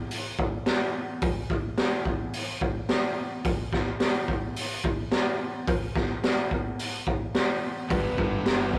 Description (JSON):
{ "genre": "indie rock", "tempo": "108 BPM", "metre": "4/4", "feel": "straight", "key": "G major", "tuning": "A4 = 441 Hz", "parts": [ { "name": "raw garage drum kit", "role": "drums", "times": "0.1-8.8 s", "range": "hi-hat, kick drum, snare drum", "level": "-28 LUFS", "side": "equal", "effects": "none" }, { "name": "crunchy overdriven guitar", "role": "riff", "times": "7.9-8.8 s", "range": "G2 to D4", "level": "-34 LUFS", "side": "equal", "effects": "none" }, { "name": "raw garage guitar", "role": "riff", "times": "7.9-8.8 s", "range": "G3 to B4", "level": "-33 LUFS", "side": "equal", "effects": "overdrive" }, { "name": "fuzz fingered electric bass", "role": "bass", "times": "7.9-8.8 s", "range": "G1", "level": "-36 LUFS", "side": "equal", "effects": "overdrive" } ], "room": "light reverb", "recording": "rough rehearsal-room recording, tube saturation", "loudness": "-28 LUFS", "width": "mono", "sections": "0.0-8.8 A section", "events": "none", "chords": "0.0 N.C.; 7.9 G", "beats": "0.11 0.67 | 1.23 1.78 2.34 2.90 | 3.45 4.01 4.57 5.12 | 5.68 6.23 6.79 7.35 | 7.90 8.46" }